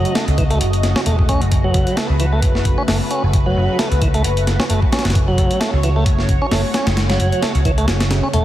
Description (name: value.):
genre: breakbeat, breaks.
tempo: 132 BPM.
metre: 4/4.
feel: swing 55% on 16ths.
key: F# dorian.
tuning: A4 = 440 Hz.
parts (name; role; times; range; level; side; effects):
phased analog pad; sustained chords; 0.0-8.4 s; C#3 to D#5; -23 LUFS; right 1 dB; phaser, chorus, sidechain pumping.
tonewheel organ; riff; 0.0-8.4 s; E3 to C#4; -22 LUFS; equal; overdrive, digital delay.
picked electric bass; bass; 0.0-8.4 s; E1 to C#2; -18 LUFS; equal; none.
breakbeat sampler-style drum kit; drums; 0.1-8.4 s; hi-hat, kick drum, snare drum; -19 LUFS; equal; none.
room: light reverb.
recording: heavily compressed radio sound, multiband compression.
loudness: -14 LUFS.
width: side -13 dB against mid.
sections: 0.0-8.4 A section.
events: none.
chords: 0.0 F#m.